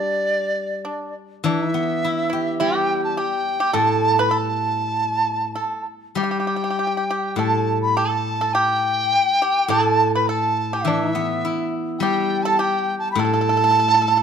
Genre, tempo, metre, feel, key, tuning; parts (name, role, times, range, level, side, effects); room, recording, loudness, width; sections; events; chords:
chinese traditional, Chinese chamber ensemble; 103 BPM; 4/4; rubato; A shang mode; A4 = 440 Hz
large dizi; melody; 0.0-14.2 s; D5 to B5; -21 LUFS; right 1 dB
pipa; second line; 0.0-14.2 s; D4 to B4; -24 LUFS; right 3 dB
steel-string zither; accompaniment; 0.0-14.2 s; A2 to G4; -23 LUFS; left 2 dB
moderate recital hall reverb, RT60 1.6 s; close, detailed microphones; -18 LUFS; side -7 dB against mid
0.0-14.2 A section